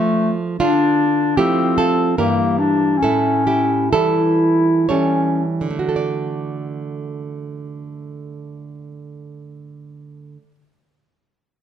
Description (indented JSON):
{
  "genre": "romantic duo for clarinet and classical guitar",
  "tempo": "53-77 BPM",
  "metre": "3/4",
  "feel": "rubato",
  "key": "unclear",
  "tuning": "A4 = 440 Hz",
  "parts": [
    { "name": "mellow clarinet", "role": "melody", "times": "0.0-5.4 s", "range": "A3 to E4", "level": "-17 LUFS", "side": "left 3 dB", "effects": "none" },
    { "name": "nylon-string guitar", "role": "accompaniment", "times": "0.0-10.5 s", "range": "G2 to D5", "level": "-20 LUFS", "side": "right 4 dB", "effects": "none" }
  ],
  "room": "light reverb",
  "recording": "close, detailed microphones",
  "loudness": "-15 LUFS",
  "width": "side -9 dB against mid",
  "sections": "0.0-6.0 A section; 6.0-9.1 B section",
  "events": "slowing down 0.0-6.0",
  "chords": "0.0 Dm/F; 0.6 Dm; 2.2 Edim/G; 3.0 A7; 6.0 D"
}